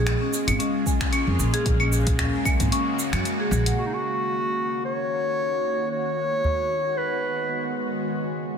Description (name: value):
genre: organic downtempo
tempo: 113 BPM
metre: 4/4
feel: swing 54% on 16ths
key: Eb minor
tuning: A4 = 438 Hz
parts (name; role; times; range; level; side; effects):
- bowed-like drone; sustained chords; 0.0-8.6 s; Db3 to Gb4; -29 LUFS; right 1 dB; built-in reverb, phaser, sidechain pumping
- marimba with medium hard mallets; arpeggios; 0.0-3.8 s; Db4 to Ab5; -28 LUFS; left 2 dB; tape echo
- upright bass; bass; 0.0-3.7 s; Ab1 to Gb2; -24 LUFS; equal; tube saturation, sidechain pumping
- deep house drum kit; drums; 0.1-3.8 s; cabasa, claves, finger snaps, hi-hat; -28 LUFS; equal; soft clipping on snare
- electronic kick drum; drums; 0.9-2.7 s; none; -24 LUFS; equal; none
- udu; percussion; 2.2-2.6, 6.4-6.6 s; none; -29 LUFS; equal; none
- clear clarinet; melody; 3.8-7.8 s; Eb4 to Db5; -25 LUFS; left 1 dB; ping-pong delay
room: moderate lush hall reverb, RT60 2.7 s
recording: dense, heavily limited modern master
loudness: -22 LUFS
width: side -7 dB against mid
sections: 0.0-3.8 A section; 3.8-8.6 B section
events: filter sweep on synth drone 3.8-8.6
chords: 0.0 Bbm7; 1.7 Gbadd9; 3.8 Ebm7; 5.9 B6; 8.0 Bbm7